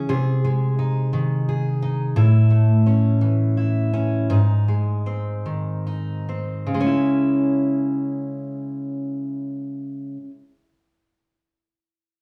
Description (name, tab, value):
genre	pop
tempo	45-58 BPM (dotted quarters)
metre	6/8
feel	straight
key	C# harmonic minor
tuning	A4 = 439 Hz
part	picked steel-string acoustic guitar	solo	0.0-10.4 s	G#2 to G#4	-21 LUFS	equal	none
room	wet large studio reverb, RT60 0.8 s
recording	band playing live in one room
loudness	-21 LUFS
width	mono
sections	0.0-6.7 A section; 6.7-12.0 B section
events	slowing down 2.2-6.7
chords	0.1 G#/B#; 2.2 A; 4.3 G#; 6.7 C#m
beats	| 0.10 1.14 | 2.17 3.22 | 4.31 5.46 | 6.73 8.06 | 9.39